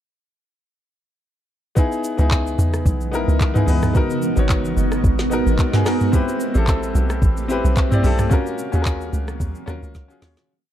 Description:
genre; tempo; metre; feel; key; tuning
amapiano; 110 BPM; 4/4; swing 55% on 16ths; C# dorian; A4 = 444 Hz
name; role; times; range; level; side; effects
clear grand piano; accompaniment; 1.8-10.5 s; B3 to D5; -23 LUFS; left 3 dB; none
granular cloud pad; sustained chords; 2.7-10.5 s; C#3 to E#5; -25 LUFS; right 3 dB; built-in reverb, sidechain pumping
smooth R&B drum kit; drums; 1.8-10.5 s; handclaps, hi-hat, kick drum, rim click, shaker, snare drum, toms; -19 LUFS; equal; none
tight log drum bass; bass; 2.2-10.4 s; F#1 to E2; -20 LUFS; equal; none
room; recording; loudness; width
digital ambience; dark, warm production; -17 LUFS; side -11 dB against mid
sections
1.8-10.5 drop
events
drop 1.8-10.5; fade-out 8.3-10.5; drum fill 9.9-10.5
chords
1.8 C#m9; 4.0 G#m9; 6.1 Am9; 8.3 D#m9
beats
| 1.77 2.31 2.86 3.40 | 3.95 4.50 5.04 5.59 | 6.13 6.68 7.22 7.77 | 8.31 8.86 9.40 9.95

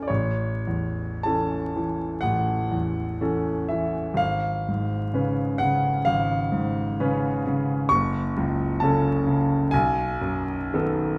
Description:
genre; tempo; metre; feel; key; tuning
classical, romantic nocturne for solo piano; 48-67 BPM; 4/4; rubato; A major; A4 = 443 Hz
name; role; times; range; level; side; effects
clear grand piano; solo; 0.0-11.2 s; F#1 to C#6; -25 LUFS; equal; none
room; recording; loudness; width
wet recital hall reverb, RT60 1.5 s; dark, warm production, vinyl crackle; -25 LUFS; mono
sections
0.1-11.2 A section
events
none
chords
0.1 A; 4.2 C#7/G#; 7.9 F#m; 9.7 B7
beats
| 0.09 1.25 2.22 3.21 | 4.19 5.14 6.07 6.99 | 7.90 8.80 9.71 10.72

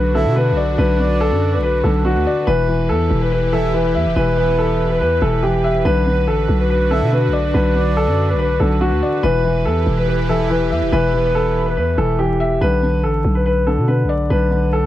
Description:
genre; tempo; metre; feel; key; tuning
hip hop; 142 BPM; 4/4; half-time; B minor; A4 = 440 Hz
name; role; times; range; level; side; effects
dark concert grand piano; melody; 0.0-14.9 s; F#4 to B4; -20 LUFS; left 1 dB; low-pass filter, tape echo
felt-muted upright piano; accompaniment; 0.0-14.9 s; D3 to E5; -21 LUFS; left 1 dB; low-pass filter
airy breathy pad; sustained chords; 0.0-12.6 s; E3 to B4; -26 LUFS; right 2 dB; chorus
growling 808-style bass; bass; 0.0-14.9 s; E1 to B2; -18 LUFS; equal; none
breathy flute-like synth lead; second line; 0.1-11.7 s; B4 to E5; -26 LUFS; right 2 dB; chorus, tape echo
room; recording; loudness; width
small room ambience; vinyl crackle; -14 LUFS; side -13 dB against mid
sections
0.0-12.6 A section; 12.6-14.9 B section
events
none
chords
0.0 Bm; 2.5 Em; 5.9 Bm; 9.2 Em; 12.6 Bm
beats
0.36 | 0.78 1.20 1.63 2.05 | 2.47 2.89 3.32 3.74 | 4.16 4.58 5.01 5.43 | 5.85 6.27 6.70 7.12 | 7.54 7.96 8.39 8.81 | 9.23 9.65 10.08 10.50 | 10.92 11.34 11.77 12.19 | 12.61 13.03 13.46 13.88 | 14.30 14.72

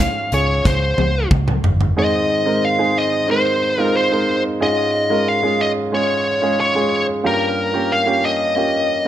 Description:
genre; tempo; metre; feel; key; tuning
piano-driven pop; 91 BPM; 4/4; straight; Ab major; A4 = 439 Hz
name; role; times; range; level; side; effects
smooth overdriven lead guitar; melody; 0.0-9.1 s; Bb4 to F5; -18 LUFS; left 1 dB; none
warm grand piano; accompaniment; 0.0-9.1 s; G2 to Db5; -20 LUFS; right 2 dB; none
vintage muted picked electric bass; bass; 0.0-1.9 s; G1 to Db2; -19 LUFS; equal; none
modern studio drum kit; drums; 0.3-2.0 s; hi-hat, kick drum, snare drum, toms; -18 LUFS; equal; none
room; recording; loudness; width
light reverb, small room reverb; none; -15 LUFS; side -11 dB against mid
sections
0.0-2.0 A section; 2.0-9.1 B section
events
drum fill 0.7-2.0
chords
0.0 Dbmaj7; 2.0 Ab; 4.6 Db; 7.2 Gm7b5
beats
0.65 1.31 | 1.97 2.63 3.29 3.95 | 4.61 5.27 5.92 6.58 | 7.24 7.90 8.56

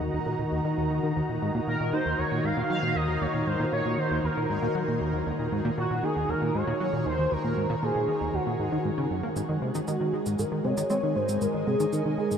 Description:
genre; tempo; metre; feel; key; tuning
ambient, sequencer-driven space music; 117 BPM; 4/4; straight; Eb dorian; A4 = 439 Hz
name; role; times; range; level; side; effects
sweeping resonant pad; sustained chords; 0.0-12.4 s; Eb3 to Bb5; -30 LUFS; left 1 dB; chorus, shimmer reverb
plucky analog bass; riff; 0.0-12.4 s; Eb2 to C4; -29 LUFS; equal; analog chorus, shimmer reverb, analog delay
bubbling stepped-filter texture; texture; 0.0-12.4 s; Ab4 to Ab5; -46 LUFS; right 1 dB; chorus, built-in reverb, shimmer reverb
expressive synth lead; melody; 1.7-12.4 s; Gb4 to F5; -29 LUFS; right 1 dB; ensemble chorus, shimmer reverb, analog delay
shaker and congas; percussion; 9.4-12.4 s; none; -35 LUFS; right 2 dB; analog delay
room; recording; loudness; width
wet huge ambient reverb, RT60 7.7 s; dark, warm production; -25 LUFS; side -7 dB against mid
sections
0.0-12.4 A section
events
fade-in on synth texture 0.0-12.4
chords
0.0 Ebm; 9.4 Abadd9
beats
0.14 0.65 | 1.16 1.67 2.19 2.70 | 3.21 3.73 4.24 4.75 | 5.26 5.78 6.29 6.80 | 7.31 7.83 8.34 8.85 | 9.37 9.88 10.39 10.90 | 11.42 11.93

